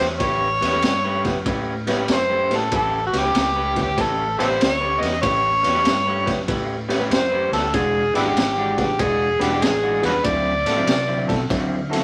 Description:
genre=electric blues shuffle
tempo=96 BPM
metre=4/4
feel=swing 66% on 8ths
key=A mixolydian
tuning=A4 = 440 Hz
part: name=overdriven harmonica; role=melody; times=0.0-11.5 s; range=D4 to D#5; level=-23 LUFS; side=equal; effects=none
part: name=clear baby grand piano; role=accompaniment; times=0.0-12.0 s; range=B3 to B4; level=-30 LUFS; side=equal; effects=none
part: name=electric guitar through a small old amp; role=riff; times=0.0-12.0 s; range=D3 to B4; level=-29 LUFS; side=equal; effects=none
part: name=fingered electric bass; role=bass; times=0.0-12.0 s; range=E1 to D3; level=-33 LUFS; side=equal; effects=none
part: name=raw garage drum kit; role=drums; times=0.0-12.0 s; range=kick drum, ride cymbal, snare drum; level=-26 LUFS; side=equal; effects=none
room=moderate studio reverb, RT60 0.8 s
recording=vinyl crackle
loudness=-20 LUFS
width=mono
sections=0.0-12.0 A section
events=none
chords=0.0 A9; 7.7 E9; 10.2 D9

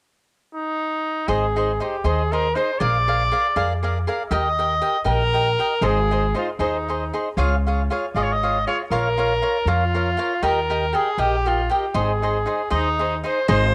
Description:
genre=mexican folk, mariachi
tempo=79 BPM (dotted quarters)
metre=6/8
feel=rubato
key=Ab major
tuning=A4 = 442 Hz
part: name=clear trumpet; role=melody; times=0.5-13.7 s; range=Eb4 to Eb5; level=-25 LUFS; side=equal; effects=cassette tape
part: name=cavaquinho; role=accompaniment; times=1.3-13.7 s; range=Eb4 to G5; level=-26 LUFS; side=equal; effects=none
part: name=upright bass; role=bass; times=1.3-13.7 s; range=Ab1 to F2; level=-26 LUFS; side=equal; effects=none
room=moderate spring reverb, RT60 2.5 s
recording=home recording on cassette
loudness=-21 LUFS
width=mono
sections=0.0-1.3 A section; 1.3-13.5 B section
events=none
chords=0.0 N.C.; 1.3 Ab; 2.8 Bb7; 4.3 Eb; 5.8 Ab; 7.4 Db; 8.9 Bbm; 10.4 Eb; 11.9 Ab

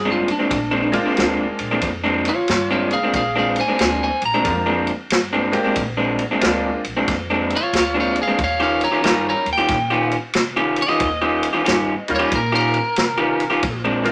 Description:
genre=electric blues shuffle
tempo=92 BPM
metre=4/4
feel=swing 64% on 8ths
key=unclear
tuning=A4 = 440 Hz
part: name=lightly driven lead guitar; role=melody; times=0.0-13.8 s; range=D4 to Bb5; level=-24 LUFS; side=equal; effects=none
part: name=upright bass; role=bass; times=0.0-14.1 s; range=Bb1 to C3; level=-32 LUFS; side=equal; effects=none
part: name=electric guitar through a small old amp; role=riff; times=0.1-14.1 s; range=Bb2 to G4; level=-22 LUFS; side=equal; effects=none
part: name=vintage drum kit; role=drums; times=0.3-14.1 s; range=kick drum, ride cymbal, snare drum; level=-27 LUFS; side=equal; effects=none
part: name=bright grand piano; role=accompaniment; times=0.9-14.1 s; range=G3 to G4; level=-25 LUFS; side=equal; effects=none
room=moderate studio reverb, RT60 0.5 s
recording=none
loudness=-19 LUFS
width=mono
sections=0.0-14.1 A section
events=lead electric guitar solo 0.0-14.1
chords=0.0 Bb9; 8.4 Eb9

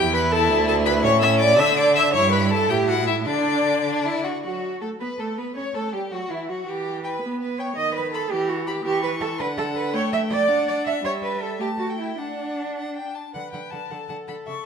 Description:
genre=quick classical-period movement for string quartet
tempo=102-113 BPM (dotted quarters)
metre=6/8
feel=rubato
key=D major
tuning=A4 = 440 Hz
part: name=clear violin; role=melody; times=0.0-14.6 s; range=D4 to E6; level=-27 LUFS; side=left 10 dB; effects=none
part: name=rich violin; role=second line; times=0.0-14.5 s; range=C#4 to C#6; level=-29 LUFS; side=left 4 dB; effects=none
part: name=rich viola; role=accompaniment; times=0.0-14.7 s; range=D3 to E5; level=-25 LUFS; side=right 1 dB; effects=none
part: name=rich cello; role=bass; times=0.0-14.5 s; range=D2 to E5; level=-25 LUFS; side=right 4 dB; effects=none
room=moderate recital hall reverb, RT60 1.5 s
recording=none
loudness=-20 LUFS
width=side -6 dB against mid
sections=0.0-4.4 A section; 4.4-13.3 A section; 13.3-14.7 A section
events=none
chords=0.0 Emadd11; 0.5 Asus24/D; 1.0 A; 1.6 Dsus2; 2.1 Em/G; 2.7 A5; 3.3 N.C.; 4.4 F#madd11; 5.6 A; 6.1 Esus2; 6.7 Em; 7.8 B/D#; 8.3 Em; 8.8 C#dim/E; 9.4 D; 9.9 A7; 10.5 D; 11.0 Em/G; 11.6 A5; 12.2 D

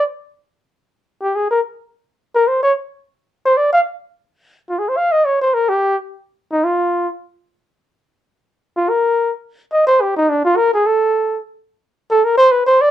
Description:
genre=jazz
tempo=215 BPM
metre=4/4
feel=swing 58% on 8ths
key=unclear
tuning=A4 = 440 Hz
part: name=trumpet with bucket mute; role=solo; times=0.0-12.9 s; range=D4 to F5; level=-13 LUFS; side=equal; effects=none
room=light reverb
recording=none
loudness=-14 LUFS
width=side -12 dB against mid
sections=0.8-12.9 A section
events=muted trumpet solo 0.8-12.9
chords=none

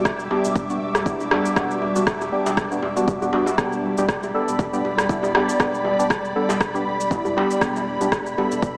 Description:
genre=afro house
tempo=119 BPM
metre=4/4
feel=swing 55% on 16ths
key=unclear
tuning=A4 = 440 Hz
part: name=ethereal airy pad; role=sustained chords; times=0.0-8.8 s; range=G3 to D6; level=-28 LUFS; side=equal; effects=ensemble chorus, built-in reverb, sidechain pumping
part: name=warm sub bass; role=bass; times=0.0-8.8 s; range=E1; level=-41 LUFS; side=equal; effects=sidechain pumping
part: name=electronic kick drum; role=drums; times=0.1-8.7 s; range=none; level=-27 LUFS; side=equal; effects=none
part: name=electronic rim click and shaker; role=drums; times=0.1-8.7 s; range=none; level=-28 LUFS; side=equal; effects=none
part: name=deep mellow chord stab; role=stabs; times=0.3-8.7 s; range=G3 to A4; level=-26 LUFS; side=equal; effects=chorus, cassette tape, sidechain pumping, tape echo
part: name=djembe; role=percussion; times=0.3-8.7 s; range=none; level=-32 LUFS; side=equal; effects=none
room=wet lush hall reverb, RT60 2.1 s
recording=dreamy mix soaked in reverb, small speaker sound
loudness=-22 LUFS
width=mono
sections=0.0-8.8 A section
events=none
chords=0.0 Em7; 3.6 G/E

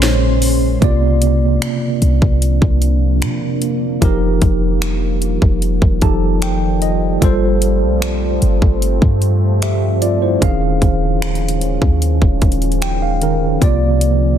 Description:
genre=contemporary R&B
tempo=75 BPM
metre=4/4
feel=straight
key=C minor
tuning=A4 = 440 Hz
part: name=tine electric piano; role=accompaniment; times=0.0-14.4 s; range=Bb2 to A5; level=-18 LUFS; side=right 1 dB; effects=medium stereo tremolo
part: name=deep dark ambient pad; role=sustained chords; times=0.0-14.4 s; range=C3 to D4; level=-22 LUFS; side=equal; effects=chorus, built-in reverb
part: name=clean 808-style bass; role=bass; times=0.0-14.4 s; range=Eb1 to C3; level=-16 LUFS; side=equal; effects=none
part: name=trap drum kit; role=drums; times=0.0-14.2 s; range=finger snaps, hi-hat, kick drum, snare drum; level=-17 LUFS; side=equal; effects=soft clipping on snare
room=digital ambience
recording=dense, heavily limited modern master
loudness=-13 LUFS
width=side -10 dB against mid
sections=0.8-14.4 A section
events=tine electric piano fill 5.6-7.2, 12.4-13.6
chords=0.0 Bbm9; 0.8 C9sus4; 4.0 F9sus4; 7.2 G9sus4; 10.4 Eb9sus4; 13.6 C9sus4

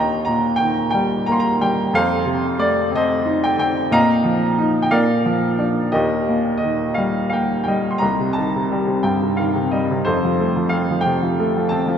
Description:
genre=classical, lyrical solo piano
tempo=60 BPM (dotted quarters)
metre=6/8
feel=rubato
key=Eb major, C dorian from 8.0 s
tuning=A4 = 441 Hz
part: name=clear baby grand piano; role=solo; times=0.0-12.0 s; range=C2 to C6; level=-16 LUFS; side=equal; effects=none
room=wet cathedral reverb, RT60 5.0 s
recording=recorded in a church or concert hall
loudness=-16 LUFS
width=side -8 dB against mid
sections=0.0-8.0 A section; 8.0-12.0 B section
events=grand piano fill 7.0-8.0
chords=0.0 Eb; 1.9 F7; 3.9 Bbsus4; 4.9 Bb; 5.9 Eb; 8.0 Cm; 10.1 Fadd9

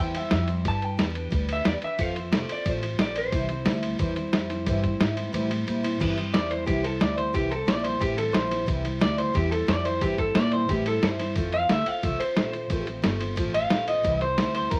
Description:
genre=rockabilly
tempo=179 BPM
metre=4/4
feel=straight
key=C mixolydian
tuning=A4 = 440 Hz
part: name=electric guitar through a small old amp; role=melody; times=0.0-14.8 s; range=G4 to A5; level=-30 LUFS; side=equal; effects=none
part: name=picked steel-string acoustic guitar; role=accompaniment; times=0.0-14.8 s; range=C3 to C5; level=-34 LUFS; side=equal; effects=none
part: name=upright bass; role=bass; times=0.0-14.8 s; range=F1 to Bb2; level=-32 LUFS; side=equal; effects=none
part: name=lo-fi sampler-style drum kit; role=drums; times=0.1-14.8 s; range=crash cymbal, kick drum, ride cymbal, snare drum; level=-30 LUFS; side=equal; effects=none
room=moderate studio reverb, RT60 0.5 s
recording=vinyl crackle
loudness=-26 LUFS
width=mono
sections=0.0-6.0 A section; 6.0-14.8 B section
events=kick and snare drop out 5.3-6.0; clean electric guitar solo 6.0-14.8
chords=0.0 C; 0.6 G; 2.0 F; 3.3 C; 11.4 F; 14.0 C

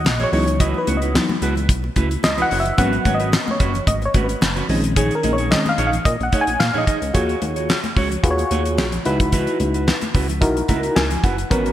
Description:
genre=early-eighties boogie funk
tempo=110 BPM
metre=4/4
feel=straight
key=unclear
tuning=A4 = 442 Hz
part: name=FM electric piano with tremolo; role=accompaniment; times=0.0-11.7 s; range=Eb3 to Bb5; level=-21 LUFS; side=left 1 dB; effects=none
part: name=chorused synth bass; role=bass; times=0.0-11.7 s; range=Gb1 to Bb2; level=-23 LUFS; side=equal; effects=none
part: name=congas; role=percussion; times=0.0-11.7 s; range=none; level=-30 LUFS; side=left 2 dB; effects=none
part: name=mellow electric guitar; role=riff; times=0.1-11.7 s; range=Db4 to Eb5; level=-26 LUFS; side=right 4 dB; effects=wide subtle chorus
part: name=damped 70s drum kit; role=drums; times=0.1-11.7 s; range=handclaps, hi-hat, kick drum, snare drum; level=-21 LUFS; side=equal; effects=none
room=moderate lush hall reverb, RT60 1.8 s, small room reverb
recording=bright 1980s-style digital production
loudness=-16 LUFS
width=side -12 dB against mid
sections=0.0-7.1 A section; 7.1-11.7 B section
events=FM electric piano solo 0.0-7.1; FM electric piano fill 10.4-11.5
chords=0.3 Dbm11; 2.8 Abm11; 4.7 Bbm11; 7.1 Ebm11; 9.1 Dbm11

